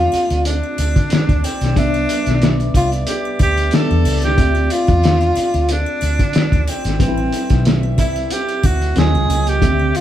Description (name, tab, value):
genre	lush 1970s-style soul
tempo	92 BPM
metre	4/4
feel	swing 54% on 16ths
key	D dorian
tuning	A4 = 442 Hz
part	breathy tenor saxophone	melody	0.0-10.0 s	C4 to A4	-20 LUFS	right 1 dB	none
part	tine electric piano	accompaniment	0.0-10.0 s	D3 to E5	-24 LUFS	left 1 dB	overdrive, fast stereo tremolo
part	clear French horn section	sustained chords	0.0-10.0 s	Gb3 to E5	-29 LUFS	left 2 dB	none
part	vintage muted fingered electric bass	bass	0.0-9.9 s	G#1 to D3	-18 LUFS	equal	none
part	cloth-damped thuddy drum kit	drums	0.1-10.0 s	hi-hat, kick drum, snare drum	-18 LUFS	equal	none
part	triangle	percussion	0.1-10.0 s	none	-36 LUFS	left 2 dB	none
room	moderate studio reverb, RT60 0.7 s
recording	band playing live in one room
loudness	-14 LUFS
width	side -11 dB against mid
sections	0.0-10.0 A section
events	none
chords	0.0 Dm7; 1.8 Cmaj9; 4.4 Dm7; 7.0 Am7; 9.0 Ebm7